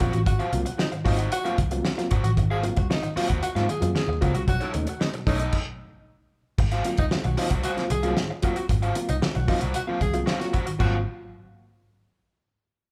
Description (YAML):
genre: funk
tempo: 114 BPM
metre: 4/4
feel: straight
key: Ab mixolydian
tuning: A4 = 440 Hz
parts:
  - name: crunchy overdriven guitar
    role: accompaniment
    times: 0.0-11.0 s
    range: D#4 to Gb5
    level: -34 LUFS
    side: equal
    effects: none
  - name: overdriven reed electric piano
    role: stabs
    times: 0.0-11.0 s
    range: Ab2 to F4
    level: -33 LUFS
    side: equal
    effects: medium tremolo
  - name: vintage muted picked electric bass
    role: bass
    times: 0.0-11.0 s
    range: Ab1 to Ab2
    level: -29 LUFS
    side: equal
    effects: none
  - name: cloth-damped thuddy drum kit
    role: drums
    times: 0.0-10.9 s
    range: crash cymbal, hi-hat, kick drum, snare drum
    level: -29 LUFS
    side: equal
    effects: none
  - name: breathy tenor saxophone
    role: second line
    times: 0.3-11.0 s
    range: Eb4 to Ab4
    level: -35 LUFS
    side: equal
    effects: none
room: moderate large studio reverb, RT60 1.3 s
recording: band playing live in one room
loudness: -25 LUFS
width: mono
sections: 0.0-6.6 A section; 6.6-10.8 B section; 10.8-12.9 C section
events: stop 5.5-6.6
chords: 0.0 Ab13; 4.5 B9; 6.6 Ab13